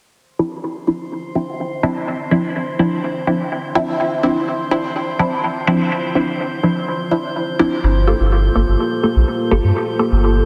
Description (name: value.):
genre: dub techno.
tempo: 125 BPM.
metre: 4/4.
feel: straight.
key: D minor.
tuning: A4 = 440 Hz.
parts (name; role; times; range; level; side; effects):
deep dark ambient pad; sustained chords; 1.2-10.5 s; Bb3 to C5; -28 LUFS; equal; chorus, built-in reverb.
drifting glass-harmonics texture; texture; 1.0-10.5 s; C5; -30 LUFS; equal; chorus, built-in reverb.
filtered dub chord stab; stabs; 0.4-10.2 s; F3 to A4; -20 LUFS; equal; phaser, dub echo.
soft dub sub bass; bass; 7.8-10.4 s; G1 to G2; -17 LUFS; equal; none.
room: wet lush hall reverb, RT60 2.7 s.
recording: dense, heavily limited modern master.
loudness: -18 LUFS.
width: mono.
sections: 0.2-10.5 A section.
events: none.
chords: 0.2 Dm9; 7.8 Gm9.